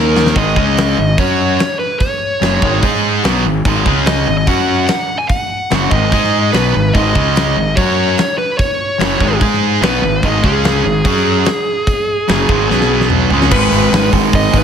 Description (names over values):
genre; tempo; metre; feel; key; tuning
hard rock; 146 BPM; 4/4; straight; G# minor; A4 = 440 Hz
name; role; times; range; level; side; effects
smooth overdriven lead guitar; melody; 0.0-14.6 s; G#4 to G#5; -18 LUFS; right 1 dB; none
overdriven electric guitar; riff; 0.0-14.6 s; F#2 to G#4; -18 LUFS; right 12 dB; none
sludgy distorted guitar; riff; 0.0-14.6 s; F#2 to G#4; -17 LUFS; left 11 dB; overdrive
fuzz fingered electric bass; bass; 0.0-14.6 s; F#1 to G#2; -18 LUFS; right 1 dB; overdrive
big rock drum kit; drums; 0.2-14.6 s; crash cymbal, hi-hat, kick drum, snare drum, toms; -17 LUFS; equal; none
room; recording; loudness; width
light reverb, studio reverb; none; -11 LUFS; side -8 dB against mid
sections
0.4-13.5 A section; 13.5-14.6 B section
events
drum fill 0.0-0.4, 12.7-13.5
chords
0.4 G#5; 0.6 C#5; 1.0 G#5; 1.2 F#5; 2.4 G#m; 3.9 C#5; 4.3 G#5; 4.5 F#5; 5.7 G#m; 7.2 C#5; 7.6 G#5; 7.8 F#5; 9.0 G#m; 10.4 C#5; 10.8 G#5; 11.1 F#5; 12.3 G#5; 12.7 B5; 13.3 C#5; 13.5 G#m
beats
| 0.36 0.77 1.18 1.59 | 2.01 2.42 2.83 3.24 | 3.65 4.07 4.48 4.89 | 5.30 5.71 6.12 6.54 | 6.95 7.36 7.77 8.18 | 8.59 9.00 9.41 9.82 | 10.23 10.64 11.06 11.47 | 11.88 12.29 12.70 13.11 | 13.52 13.93 14.34